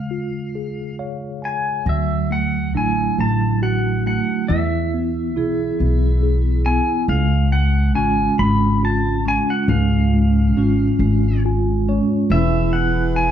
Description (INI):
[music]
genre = acoustic folk-pop ballad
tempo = 46 BPM (dotted quarters)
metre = 6/8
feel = straight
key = unclear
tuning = A4 = 444 Hz
[part]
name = pedal steel guitar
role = melody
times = 0.0-13.3 s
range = E5 to B5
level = -23 LUFS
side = left 1 dB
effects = none
[part]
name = mellow tine electric piano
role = accompaniment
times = 0.0-13.3 s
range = G#2 to G#5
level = -22 LUFS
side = left 2 dB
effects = medium stereo tremolo
[part]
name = vibraphone with medium hard mallets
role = arpeggios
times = 1.9-13.3 s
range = F#3 to G#4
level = -22 LUFS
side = right 6 dB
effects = none
[part]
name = upright bass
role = bass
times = 1.9-13.3 s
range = E1 to E2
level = -19 LUFS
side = left 1 dB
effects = none
[part]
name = hand-pumped harmonium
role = sustained chords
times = 12.3-13.3 s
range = E3 to B5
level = -28 LUFS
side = right 1 dB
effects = none
[sound]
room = light reverb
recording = dark, warm production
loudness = -16 LUFS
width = side -9 dB against mid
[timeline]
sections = 0.0-1.9 A section; 1.9-12.3 B section; 12.3-13.3 C section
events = none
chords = 0.0 C#; 1.9 Dadd9; 4.5 E; 7.1 C#; 12.3 E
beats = 0.56 | 1.87 3.18 | 4.49 5.79 | 7.08 8.38 | 9.69 11.00 | 12.31